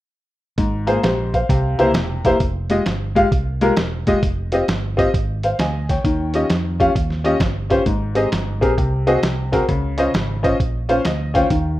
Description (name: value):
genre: uptempo gospel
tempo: 132 BPM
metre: 4/4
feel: swing 66% on 8ths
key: Ab major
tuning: A4 = 440 Hz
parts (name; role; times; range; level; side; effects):
- clear upright piano; accompaniment; 0.6-11.8 s; Ab2 to Ab5; -18 LUFS; left 1 dB; none
- fingered electric bass; bass; 0.6-11.8 s; E1 to F2; -23 LUFS; right 1 dB; none
- lo-fi sampler-style drum kit; drums; 0.6-11.6 s; hi-hat, kick drum, snare drum; -22 LUFS; right 1 dB; none
room: light reverb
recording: rough home demo mix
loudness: -16 LUFS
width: side -15 dB against mid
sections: 0.6-11.8 A section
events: upright piano fill 10.8-11.5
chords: 0.6 Ab69; 1.5 C7; 2.4 Fmadd9; 4.2 Fm13; 6.0 Eb9; 7.9 Abmaj7; 8.8 Ab7/C; 9.7 Dbmaj9